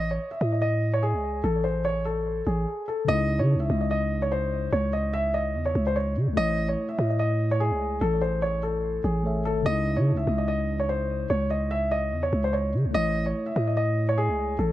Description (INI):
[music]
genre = hip hop, drill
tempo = 146 BPM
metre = 4/4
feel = half-time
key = C# harmonic minor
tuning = A4 = 440 Hz
[part]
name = dark concert grand piano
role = melody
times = 0.0-14.7 s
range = G#4 to E5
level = -27 LUFS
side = equal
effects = analog delay
[part]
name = growling 808-style bass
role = bass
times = 0.0-14.7 s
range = G#1 to C#3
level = -26 LUFS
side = equal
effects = none
[part]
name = mellow tine electric piano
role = accompaniment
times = 3.0-14.7 s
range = C#3 to E5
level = -32 LUFS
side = left 2 dB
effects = auto-pan, analog delay
[sound]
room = light reverb, small room ambience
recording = echo-heavy mix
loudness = -23 LUFS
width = side -14 dB against mid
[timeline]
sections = 0.0-3.1 A section; 3.1-14.7 B section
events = break 0.0-3.1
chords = 0.0 N.C.; 3.1 C#madd9; 6.4 A; 9.7 C#madd9; 12.9 A